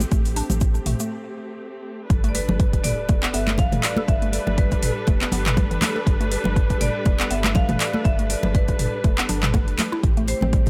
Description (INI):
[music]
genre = afro house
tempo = 121 BPM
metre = 4/4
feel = swing 56% on 16ths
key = unclear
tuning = A4 = 441 Hz
[part]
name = marimba with hard mallets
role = melody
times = 0.0-10.7 s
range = A4 to F5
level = -32 LUFS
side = equal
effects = delay
[part]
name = dark studio string section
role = sustained chords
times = 0.0-10.7 s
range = G3 to B4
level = -32 LUFS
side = equal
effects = sidechain pumping
[part]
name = warm sub bass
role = bass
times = 0.0-10.7 s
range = F1 to A1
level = -28 LUFS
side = equal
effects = sidechain pumping
[part]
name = deep house drum kit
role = drums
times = 0.0-10.7 s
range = handclaps, hi-hat, toms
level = -28 LUFS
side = equal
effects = overdrive
[part]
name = congas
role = percussion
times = 0.0-10.7 s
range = none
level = -28 LUFS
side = equal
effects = none
[part]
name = egg shaker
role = percussion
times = 0.0-1.1 s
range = none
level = -36 LUFS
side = equal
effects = none
[part]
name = mallet-like synth pluck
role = arpeggios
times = 0.1-10.7 s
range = E3 to A4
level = -34 LUFS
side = equal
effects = chorus, phaser, sidechain pumping, delay
[part]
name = electronic kick drum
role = drums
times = 0.1-10.7 s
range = none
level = -22 LUFS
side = equal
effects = overdrive
[part]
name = sub drop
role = sound effects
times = 2.1-4.1 s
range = none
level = -36 LUFS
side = equal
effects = none
[sound]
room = small room ambience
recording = none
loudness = -21 LUFS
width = mono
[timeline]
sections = 0.0-2.1 A section; 2.1-10.7 B section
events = break 1.1-2.1; drop 2.1-10.7; impact 2.1-4.1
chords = 0.0 Am7; 2.1 G; 10.0 Am7